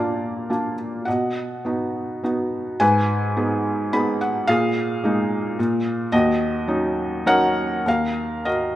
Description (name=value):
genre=classical, lyrical solo piano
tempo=106 BPM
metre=3/4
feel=rubato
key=Eb minor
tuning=A4 = 440 Hz
part: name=felt-muted upright piano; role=solo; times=0.0-8.8 s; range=Eb2 to Cb6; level=-20 LUFS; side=equal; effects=none
room=moderate recital hall reverb, RT60 1.8 s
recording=none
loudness=-19 LUFS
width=side -14 dB against mid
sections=0.0-7.9 A section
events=felt piano fill 3.6-4.5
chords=0.0 Bb; 1.1 B; 2.8 Abm; 4.5 Bb7sus4; 5.6 Bb5; 6.1 Ebm7; 7.9 Ebm